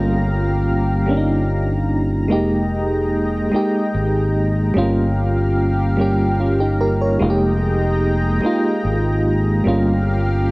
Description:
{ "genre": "R&B", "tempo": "49 BPM (dotted quarters)", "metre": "6/8", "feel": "straight", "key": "F minor", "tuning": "A4 = 440 Hz", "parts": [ { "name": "FM electric piano with tremolo", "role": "accompaniment", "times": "0.0-10.5 s", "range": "G3 to Db5", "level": "-19 LUFS", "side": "right 1 dB", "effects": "cassette tape" }, { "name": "lush unison pad", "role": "sustained chords", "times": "0.0-10.5 s", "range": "Ab3 to Bb5", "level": "-26 LUFS", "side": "left 1 dB", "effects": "chorus, cassette tape" }, { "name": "fingered electric bass", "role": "bass", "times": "0.0-10.5 s", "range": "F1 to Ab1", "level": "-19 LUFS", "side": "equal", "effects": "none" } ], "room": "little or no reverb", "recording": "home recording on cassette", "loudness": "-16 LUFS", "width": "side -24 dB against mid", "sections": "0.0-10.5 A section", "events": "none", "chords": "0.0 Gm7b5; 2.3 Fm11; 4.8 Gm7b5; 7.2 Fm11; 9.6 Gm7b5" }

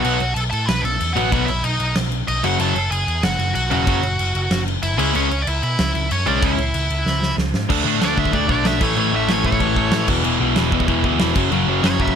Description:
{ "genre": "punk rock", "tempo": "188 BPM", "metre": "4/4", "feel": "straight", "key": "F# minor", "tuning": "A4 = 439 Hz", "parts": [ { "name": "nasal lead guitar with a parked wah", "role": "melody", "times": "0.0-12.2 s", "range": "C#4 to B5", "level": "-23 LUFS", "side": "equal", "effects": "overdrive" }, { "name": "overdriven electric guitar", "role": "riff", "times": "0.0-12.2 s", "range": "E2 to D4", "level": "-22 LUFS", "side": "left 15 dB", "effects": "none" }, { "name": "tight distorted guitar", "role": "riff", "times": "0.0-12.2 s", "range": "E2 to D4", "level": "-22 LUFS", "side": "right 17 dB", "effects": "distortion" }, { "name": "overdriven picked electric bass", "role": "bass", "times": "0.0-12.1 s", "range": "E1 to B2", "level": "-23 LUFS", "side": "right 1 dB", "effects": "none" }, { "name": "big rock drum kit", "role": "drums", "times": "0.0-12.2 s", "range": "crash cymbal, kick drum, snare drum", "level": "-22 LUFS", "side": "equal", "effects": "none" } ], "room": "little or no reverb", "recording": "none", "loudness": "-16 LUFS", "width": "side -7 dB against mid", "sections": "0.0-7.7 A section; 7.7-12.2 B section", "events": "half time 0.0-7.7; drum fill 7.1-7.7; lead electric guitar solo 7.7-12.2", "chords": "0.0 B; 2.4 F#m; 5.0 C#m; 7.7 D5; 8.8 A; 10.1 E5; 11.4 F#5" }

